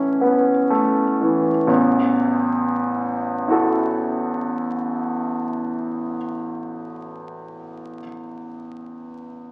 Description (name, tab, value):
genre	classical, impressionist solo piano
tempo	29-35 BPM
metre	4/4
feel	rubato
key	A major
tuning	A4 = 438 Hz
part	bright concert grand piano	solo	0.0-9.5 s	A1 to E6	-22 LUFS	equal	none
room	wet recital hall reverb, RT60 1.6 s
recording	very old 78 rpm record, vinyl crackle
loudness	-21 LUFS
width	mono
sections	0.0-1.7 A section; 1.7-8.9 B section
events	slowing down 0.0-1.7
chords	0.0 Aadd9; 1.7 A5